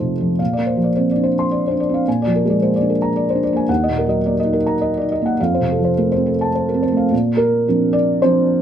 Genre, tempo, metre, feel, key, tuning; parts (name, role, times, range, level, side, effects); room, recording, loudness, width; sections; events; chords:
neoclassical minimalist piano; 102-112 BPM; 3/4; rubato; Bb major; A4 = 440 Hz
felt-muted upright piano; solo; 0.0-8.6 s; Eb2 to C6; -15 LUFS; equal
moderate small room ambience, RT60 0.5 s; band playing live in one room; -15 LUFS; side -9 dB against mid
0.4-7.1 A section; 7.1-8.6 B section
0.4 Bbadd9; 2.1 Bb7; 3.7 Ebm; 5.4 F; 7.1 Bbadd9